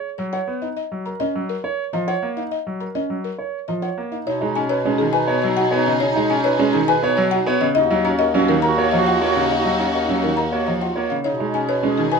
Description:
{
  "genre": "classical, minimalist pattern music",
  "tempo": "103 BPM",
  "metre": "3/4",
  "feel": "straight",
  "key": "B lydian",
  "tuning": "A4 = 445 Hz",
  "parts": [
    { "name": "dark concert grand piano", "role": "arpeggios", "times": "0.0-12.2 s", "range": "C#4 to C#5", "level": "-23 LUFS", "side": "right 6 dB", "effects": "none" },
    { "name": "buzzing marimba with medium mallets", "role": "melody", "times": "0.2-12.2 s", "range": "G#4 to A#5", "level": "-24 LUFS", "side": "left 6 dB", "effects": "none" },
    { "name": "clear baby grand piano", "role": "accompaniment", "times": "0.2-12.2 s", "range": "C#3 to C#4", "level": "-24 LUFS", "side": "equal", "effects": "none" },
    { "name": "warm clarinet", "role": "second line", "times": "4.3-12.2 s", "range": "D#4 to G#4", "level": "-26 LUFS", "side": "right 5 dB", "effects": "none" },
    { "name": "warm studio violin section", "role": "sustained chords", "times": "4.3-12.2 s", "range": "D#4 to G#4", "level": "-27 LUFS", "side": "left 2 dB", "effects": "none" },
    { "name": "bright bass clarinet", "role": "bass", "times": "4.3-12.2 s", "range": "D#2 to B2", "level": "-25 LUFS", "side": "left 3 dB", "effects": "none" }
  ],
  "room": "light reverb",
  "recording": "none",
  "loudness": "-18 LUFS",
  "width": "side -5 dB against mid",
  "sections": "0.0-4.3 A section; 4.3-12.2 A section",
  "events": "none",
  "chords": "0.0 B; 0.8 D#m7; 4.3 B6; 7.8 D#m7; 11.3 B6"
}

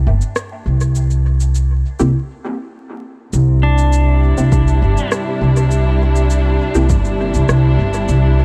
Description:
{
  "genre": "ambient dub",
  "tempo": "101 BPM",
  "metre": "4/4",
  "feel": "straight",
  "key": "C major",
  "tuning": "A4 = 440 Hz",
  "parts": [
    { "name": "upright bass", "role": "bass", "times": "0.0-8.4 s", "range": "G1 to C2", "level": "-16 LUFS", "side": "equal", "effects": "tube saturation" },
    { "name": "electronic shaker and rim click", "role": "drums", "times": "0.2-8.2 s", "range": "none", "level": "-27 LUFS", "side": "equal", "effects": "dub echo" },
    { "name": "filtered dub chord stab", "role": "stabs", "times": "2.0-6.9 s", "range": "Bb3 to G4", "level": "-26 LUFS", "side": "equal", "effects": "phaser, ensemble chorus, dub echo" },
    { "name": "dark chamber string section", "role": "sustained chords", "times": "3.3-8.4 s", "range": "C3 to E4", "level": "-22 LUFS", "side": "equal", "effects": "none" },
    { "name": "pedal steel guitar", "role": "arpeggios", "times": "3.6-5.1 s", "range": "D4", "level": "-27 LUFS", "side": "equal", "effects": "dub echo" },
    { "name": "electronic kick drum", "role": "drums", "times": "4.5-7.0 s", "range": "none", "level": "-20 LUFS", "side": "equal", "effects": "none" }
  ],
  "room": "little or no reverb",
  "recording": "vinyl crackle",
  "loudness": "-15 LUFS",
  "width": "mono",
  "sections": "0.0-3.3 A section; 3.3-8.4 B section",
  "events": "break 2.1-3.3",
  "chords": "0.0 N.C.; 3.3 C"
}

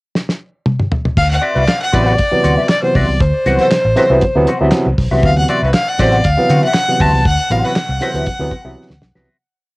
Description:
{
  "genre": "funk",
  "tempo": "118 BPM",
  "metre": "4/4",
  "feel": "straight",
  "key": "D mixolydian",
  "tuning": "A4 = 442 Hz",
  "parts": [
    { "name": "damped 70s drum kit", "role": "drums", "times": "0.1-9.3 s", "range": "crash cymbal, handclaps, hi-hat, kick drum, snare drum, toms", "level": "-18 LUFS", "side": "equal", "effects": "cassette tape" },
    { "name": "clear fiddle", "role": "melody", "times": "1.2-9.0 s", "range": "C5 to A5", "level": "-16 LUFS", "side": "left 1 dB", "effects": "cassette tape, analog delay" },
    { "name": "vintage muted fingered electric bass", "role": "bass", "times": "1.2-9.2 s", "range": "A1 to D3", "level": "-16 LUFS", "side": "equal", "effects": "none" },
    { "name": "clean electric guitar", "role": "accompaniment", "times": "1.4-9.4 s", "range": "C4 to F#5", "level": "-20 LUFS", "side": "left 2 dB", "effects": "wah, cassette tape" },
    { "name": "clear horn section", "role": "second line", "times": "1.6-8.2 s", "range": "B3 to C5", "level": "-20 LUFS", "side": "right 1 dB", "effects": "cassette tape" },
    { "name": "barky tine electric piano", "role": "stabs", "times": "1.9-9.3 s", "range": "C3 to B3", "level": "-17 LUFS", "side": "right 1 dB", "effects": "overdrive, cassette tape" }
  ],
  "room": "light reverb",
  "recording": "home recording on cassette",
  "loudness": "-12 LUFS",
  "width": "side -22 dB against mid",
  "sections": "0.0-1.2 pickup bar; 1.2-9.3 groove",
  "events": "drum fill 0.1-1.2, 8.8-9.3; fade-out 7.3-9.3",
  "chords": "0.0 N.C.; 1.2 D13"
}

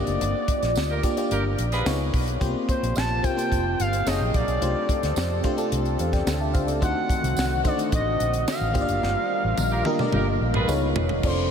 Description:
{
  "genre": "polished 1980s jazz-funk pop",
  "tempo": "109 BPM",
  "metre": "4/4",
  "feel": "straight",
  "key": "unclear",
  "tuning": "A4 = 440 Hz",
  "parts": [
    { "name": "expressive portamento lead", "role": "melody", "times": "0.0-11.5 s", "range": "C5 to A5", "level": "-28 LUFS", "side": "equal", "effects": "chorus" },
    { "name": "FM electric piano", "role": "accompaniment", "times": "0.0-11.5 s", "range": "A3 to A5", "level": "-27 LUFS", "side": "left 1 dB", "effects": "lush chorus" },
    { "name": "vintage muted fingered electric bass", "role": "bass", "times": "0.0-11.5 s", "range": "E1 to F2", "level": "-26 LUFS", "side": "equal", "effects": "none" },
    { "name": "tight funk drum kit", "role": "drums", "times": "0.1-11.4 s", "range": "crash cymbal, hi-hat, kick drum, snare drum, toms", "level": "-28 LUFS", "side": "equal", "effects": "none" },
    { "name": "tambourine", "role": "percussion", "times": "0.8-10.8 s", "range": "none", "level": "-43 LUFS", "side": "right 8 dB", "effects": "none" },
    { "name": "clear horn section", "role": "second line", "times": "0.9-1.9, 9.7-10.7 s", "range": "F4 to B4", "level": "-33 LUFS", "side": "right 1 dB", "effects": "tape echo" },
    { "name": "warm analog pad", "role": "sustained chords", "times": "2.4-11.5 s", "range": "C3 to Bb4", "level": "-32 LUFS", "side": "right 1 dB", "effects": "chorus" }
  ],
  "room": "wet huge ambient reverb, RT60 7.9 s",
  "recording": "dreamy mix soaked in reverb",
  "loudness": "-21 LUFS",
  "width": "side -7 dB against mid",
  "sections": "0.0-11.2 A section",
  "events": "band accent 0.2-2.4, 9.0-11.2; drum fill 9.0-11.2",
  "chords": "0.0 Gm7; 1.9 Db9; 2.4 C7sus4; 4.1 Gb69; 4.6 F69/C; 6.8 D7b9; 8.8 Gm7; 10.7 Db9"
}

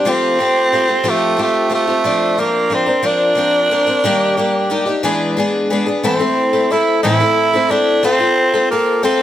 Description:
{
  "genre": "rock",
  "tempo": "60 BPM (dotted quarters)",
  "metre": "6/8",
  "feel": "straight",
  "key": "unclear",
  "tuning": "A4 = 439 Hz",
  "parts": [
    { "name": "raspy tenor saxophone", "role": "melody", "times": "0.0-9.2 s", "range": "A3 to E4", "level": "-15 LUFS", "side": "right 2 dB", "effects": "none" },
    { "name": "picked twelve-string acoustic guitar", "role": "accompaniment", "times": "0.0-9.2 s", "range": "A2 to Bb4", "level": "-16 LUFS", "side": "left 3 dB", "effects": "none" }
  ],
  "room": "moderate echo chamber reverb, RT60 1.9 s",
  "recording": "none",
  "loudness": "-13 LUFS",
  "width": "side -12 dB against mid",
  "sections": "0.0-6.0 A section; 6.0-9.2 B section",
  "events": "none",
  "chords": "0.1 Fadd9; 2.1 Bbadd9/F; 4.1 Eb; 5.0 E7; 6.0 Am; 8.0 F/A"
}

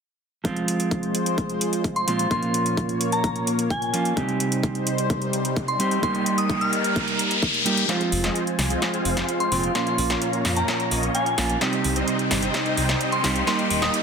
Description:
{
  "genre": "EDM, festival progressive house",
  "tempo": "129 BPM",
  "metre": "4/4",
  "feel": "straight",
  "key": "F minor",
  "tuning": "A4 = 440 Hz",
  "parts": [
    { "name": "mellow electric guitar", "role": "accompaniment", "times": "0.4-14.0 s", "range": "Bb2 to G4", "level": "-26 LUFS", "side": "right 3 dB", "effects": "sidechain pumping, ping-pong delay" },
    { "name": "lush unison pad", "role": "sustained chords", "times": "0.7-14.0 s", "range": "G3 to Bb5", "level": "-30 LUFS", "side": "left 2 dB", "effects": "chorus, phaser, sidechain pumping" },
    { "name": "big-room dance drum kit", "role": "drums", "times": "0.4-14.0 s", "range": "hi-hat, snare drum", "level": "-27 LUFS", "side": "equal", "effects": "high-pass filter on hats, high-pass filter on snare" },
    { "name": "electronic kick drum", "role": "drums", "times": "0.4-7.5 s", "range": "none", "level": "-28 LUFS", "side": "left 1 dB", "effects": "overdrive, high-pass filter on kick" },
    { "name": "soft synth bell", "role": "melody", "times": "2.0-14.0 s", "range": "Ab5 to F6", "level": "-27 LUFS", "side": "left 2 dB", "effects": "chorus, ping-pong delay" },
    { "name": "riser", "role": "sound effects", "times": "5.2-14.0 s", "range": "none", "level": "-29 LUFS", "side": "left 2 dB", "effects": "none" },
    { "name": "supersaw chords", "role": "riff", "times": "7.9-14.0 s", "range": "G3 to G5", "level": "-28 LUFS", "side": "equal", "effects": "ensemble chorus, sidechain pumping, low-pass filter, ping-pong delay" },
    { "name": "detuned saw bass", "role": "bass", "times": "8.1-13.9 s", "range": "Eb1 to F2", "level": "-28 LUFS", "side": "left 1 dB", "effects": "sidechain pumping" }
  ],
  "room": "moderate digital room reverb, RT60 1.0 s",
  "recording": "dense, heavily limited modern master",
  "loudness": "-20 LUFS",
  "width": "side -6 dB against mid",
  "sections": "0.4-7.9 A section; 7.9-14.0 B section",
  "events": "riser 5.2-7.9, 7.9-14.0; build-up 7.9-14.0; drum fill 7.9-14.0; filter sweep on supersaw synth 7.9-14.0",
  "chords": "0.4 Fm; 2.3 Bbm; 4.2 Cm; 6.0 Eb; 7.9 Fm; 9.8 Bbm; 11.6 Cm; 13.5 Eb"
}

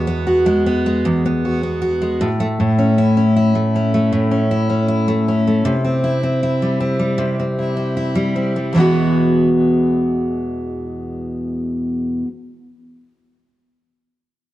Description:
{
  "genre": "pop",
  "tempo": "78 BPM",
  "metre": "4/4",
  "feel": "straight",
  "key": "E major",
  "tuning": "A4 = 440 Hz",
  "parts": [
    { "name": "picked steel-string acoustic guitar", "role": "accompaniment", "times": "0.0-12.3 s", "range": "E2 to F#4", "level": "-15 LUFS", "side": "equal", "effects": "none" }
  ],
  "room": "wet plate reverb, RT60 2.0 s",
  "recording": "worn, warbling old tape, cassette tape, warbly pitch drift",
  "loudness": "-15 LUFS",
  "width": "side -14 dB against mid",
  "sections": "0.0-8.7 A section; 8.7-11.8 B section",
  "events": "none",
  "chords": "0.0 Eadd9; 2.2 A; 5.7 C; 8.7 Eadd9"
}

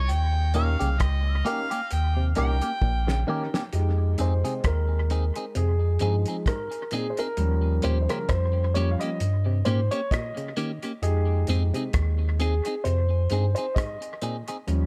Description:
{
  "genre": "roots reggae",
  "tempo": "66 BPM",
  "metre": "4/4",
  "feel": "swing 56% on 16ths",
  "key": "F minor",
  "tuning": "A4 = 439 Hz",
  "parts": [
    { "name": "mellow harmonica", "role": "melody", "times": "0.0-3.2 s", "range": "Eb5 to G5", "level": "-33 LUFS", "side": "equal", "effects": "tape echo" },
    { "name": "soft dub sub bass", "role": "bass", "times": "0.0-14.9 s", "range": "Bb1 to Ab2", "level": "-25 LUFS", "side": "equal", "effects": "none" },
    { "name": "cloth-damped thuddy drum kit", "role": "drums", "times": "0.1-14.9 s", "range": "hi-hat, kick drum, rim click, snare drum", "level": "-32 LUFS", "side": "equal", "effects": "dub echo" },
    { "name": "clean electric guitar", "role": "accompaniment", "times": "0.5-14.6 s", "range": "Bb3 to Ab4", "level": "-35 LUFS", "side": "equal", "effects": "phaser, tape echo" },
    { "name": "muted clav", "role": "arpeggios", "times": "0.5-14.4 s", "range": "Ab2 to Eb3", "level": "-37 LUFS", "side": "equal", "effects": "none" },
    { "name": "dark baby grand piano", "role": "stabs", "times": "0.5-14.9 s", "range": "F3 to F5", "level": "-33 LUFS", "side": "equal", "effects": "none" }
  ],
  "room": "studio ambience",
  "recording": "echo-heavy mix",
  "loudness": "-25 LUFS",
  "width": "mono",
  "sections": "0.0-3.7 A section; 3.7-14.9 B section",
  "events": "drum fill 2.8-3.7; grand piano solo 3.7-14.9",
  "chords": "0.1 Eb7; 3.7 Fm7; 7.4 Eb7; 11.0 Fm7"
}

